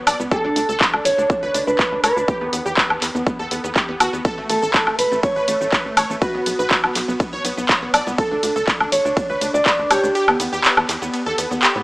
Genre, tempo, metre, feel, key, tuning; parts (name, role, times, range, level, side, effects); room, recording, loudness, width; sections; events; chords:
progressive house; 122 BPM; 4/4; straight; A4 = 440 Hz
wide unison pluck; arpeggios; 0.0-11.8 s; A3 to D5; -24 LUFS; equal; phaser, sidechain pumping, tape echo
tight sequencer bass; bass; 0.0-11.8 s; F#1 to A2; -29 LUFS; equal; sidechain pumping
big-room dance drum kit; drums; 0.1-11.7 s; cabasa, handclaps, hi-hat, ride cymbal, woodblock; -19 LUFS; equal; studio reverb
mellow electric guitar; melody; 0.3-10.4 s; F#4 to D5; -21 LUFS; right 1 dB; sidechain pumping, tape echo
electronic kick drum; drums; 0.3-9.8 s; -22 LUFS; equal; studio reverb
light reverb; small speaker sound; -16 LUFS; side -22 dB against mid
0.0-11.8 A section
kick drops out 10.2-11.8
0.3 D5; 2.3 E5; 4.2 A; 6.2 Bsus2; 8.2 D5; 10.2 E5